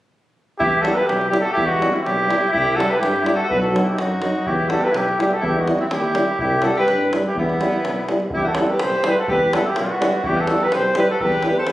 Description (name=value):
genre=balkan folk, Balkan brass band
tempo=124 BPM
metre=2/4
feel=straight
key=E harmonic minor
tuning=A4 = 440 Hz
part: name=warm cornet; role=melody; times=0.6-11.7 s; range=E4 to C5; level=-20 LUFS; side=equal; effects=none
part: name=clear alto saxophone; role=second line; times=0.6-11.7 s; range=B3 to A4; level=-24 LUFS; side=equal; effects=none
part: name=mellow tuba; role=bass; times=0.6-11.7 s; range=B1 to G2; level=-26 LUFS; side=equal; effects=none
part: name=davul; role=percussion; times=0.6-11.7 s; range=none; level=-28 LUFS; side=equal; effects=none
part: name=warm euphonium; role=accompaniment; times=0.8-11.5 s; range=F#3 to G3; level=-25 LUFS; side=right 1 dB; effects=none
part: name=warm euphonium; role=accompaniment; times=0.9-11.5 s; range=D#4 to E4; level=-28 LUFS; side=left 1 dB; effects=none
room=wet recital hall reverb, RT60 1.5 s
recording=recorded on a phone in the room, studio reverb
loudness=-17 LUFS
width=side -15 dB against mid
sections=0.6-8.3 A section; 8.3-11.7 B section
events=none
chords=0.6 Em; 2.5 C; 3.5 B; 4.5 Em; 6.4 C; 7.4 Em